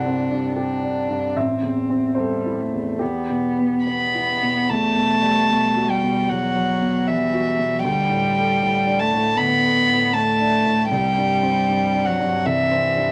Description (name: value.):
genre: neoclassical piano and strings.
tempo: 71-79 BPM.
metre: 4/4.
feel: rubato.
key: E minor.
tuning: A4 = 441 Hz.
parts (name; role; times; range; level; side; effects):
warm cello; second line; 0.0-13.1 s; E3 to D4; -26 LUFS; equal; none.
clear upright piano; accompaniment; 0.0-13.1 s; A1 to G5; -25 LUFS; equal; none.
warm violin; melody; 3.8-13.1 s; E5 to B5; -22 LUFS; equal; none.
room: moderate studio reverb, RT60 0.5 s.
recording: none.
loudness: -20 LUFS.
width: mono.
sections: 0.0-4.7 A section; 4.7-13.1 B section.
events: none.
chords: 0.0 Csus2; 1.4 Am; 3.0 Em; 4.7 Emadd9; 7.8 Gadd9/D; 10.9 Csus2.